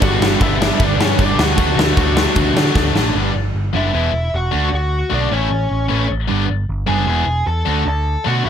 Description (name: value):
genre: punk rock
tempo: 152 BPM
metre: 4/4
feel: straight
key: unclear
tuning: A4 = 440 Hz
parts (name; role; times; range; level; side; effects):
- bluesy overdriven lead guitar; melody; 0.0-8.5 s; C#4 to A5; -21 LUFS; left 1 dB; distortion
- distorted electric guitar; riff; 0.0-8.5 s; E2 to D4; -23 LUFS; right 11 dB; distortion
- overdriven electric guitar; riff; 0.0-3.1 s; G2 to D4; -25 LUFS; right 1 dB; none
- tight distorted guitar; riff; 0.0-8.5 s; G2 to F#4; -21 LUFS; left 14 dB; distortion
- overdriven picked electric bass; bass; 0.0-8.5 s; E1 to D3; -19 LUFS; equal; none
- big rock drum kit; drums; 0.0-3.0 s; crash cymbal, kick drum, snare drum; -17 LUFS; equal; none
room: light reverb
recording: none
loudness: -14 LUFS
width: side -8 dB against mid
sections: 0.0-3.1 A section; 3.1-8.5 B section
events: drum fill 2.8-3.1; half time 3.1-8.5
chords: 0.0 G; 1.6 D; 3.1 G; 3.9 E; 4.5 D; 5.3 A; 6.3 G; 7.1 E; 7.7 D